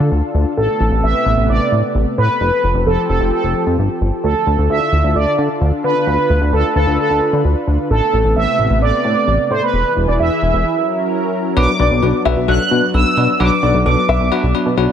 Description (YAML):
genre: pop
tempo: 131 BPM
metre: 4/4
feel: straight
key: A minor, B minor from 11.6 s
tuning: A4 = 439 Hz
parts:
  - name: analog synth brass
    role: melody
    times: 0.0-14.7 s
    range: A4 to F#6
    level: -17 LUFS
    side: right 2 dB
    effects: chorus
  - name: lush unison pad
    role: sustained chords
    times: 0.0-14.9 s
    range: C3 to B4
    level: -21 LUFS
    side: left 1 dB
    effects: chorus
  - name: chorused synth bass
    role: bass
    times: 0.0-14.9 s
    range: E1 to D3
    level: -16 LUFS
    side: equal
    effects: none
  - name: bell-like tine electric piano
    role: accompaniment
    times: 11.6-14.9 s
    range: F#3 to B4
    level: -18 LUFS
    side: left 4 dB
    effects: medium stereo tremolo
  - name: clear concert grand piano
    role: second line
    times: 11.8-14.5 s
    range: D5 to E5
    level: -22 LUFS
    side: left 5 dB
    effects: ping-pong delay
room: light reverb, digital ambience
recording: none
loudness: -13 LUFS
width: side -9 dB against mid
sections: 0.0-11.6 A section; 11.6-14.9 B section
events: break 10.7-11.6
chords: 0.0 Dm; 0.6 Amadd9; 2.4 Fadd9; 4.2 Dm; 7.9 Amadd9; 9.7 E; 10.7 F#7; 11.6 Bm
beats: 0.12 | 0.57 1.03 1.49 1.95 | 2.41 2.87 3.32 3.78 | 4.24 4.70 5.16 5.61 | 6.07 6.53 6.99 7.45 | 7.90 8.36 8.82 9.28 | 9.73 10.19 10.65 11.11 | 11.57 12.03 12.48 12.94 | 13.40 13.86 14.31 14.77